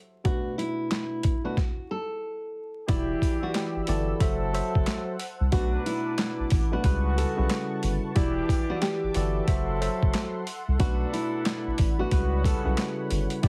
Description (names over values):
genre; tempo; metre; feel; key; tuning
hip hop, boom-bap hip-hop; 91 BPM; 4/4; swing 62% on 16ths; E minor; A4 = 440 Hz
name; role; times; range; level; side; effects
nylon-string guitar; melody; 0.2-13.5 s; E4 to A4; -34 LUFS; equal; high-pass filter, low-pass filter, slapback echo
tine electric piano; accompaniment; 0.2-13.5 s; B2 to E5; -34 LUFS; equal; cassette tape, high-pass filter, low-pass filter, plate reverb
boom bap sampler-style drum kit; drums; 0.2-13.5 s; handclaps, hi-hat, kick drum, snare drum; -29 LUFS; equal; none
warm analog pad; sustained chords; 2.9-13.5 s; G3 to E6; -43 LUFS; equal; chorus, high-pass filter, low-pass filter, plate reverb
clear horn section; stabs; 2.9-13.5 s; C#3 to B4; -41 LUFS; equal; high-pass filter, low-pass filter, slapback echo, plate reverb
soft dub sub bass; bass; 2.9-13.5 s; E1 to C#2; -30 LUFS; equal; none
sleigh bells; percussion; 2.9-13.5 s; none; -49 LUFS; equal; none
room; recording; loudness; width
light reverb; heavily compressed radio sound, multiband compression, vinyl crackle; -27 LUFS; mono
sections
0.0-2.9 A section; 2.9-13.5 B section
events
break 0.0-2.9; stop 1.6-2.9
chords
0.2 Bm7; 1.6 N.C.; 2.9 Em7; 4.2 F#m7b5; 5.5 Bm7; 6.8 A13; 8.2 Em7; 9.5 F#m7b5; 10.8 Bm7; 12.1 A13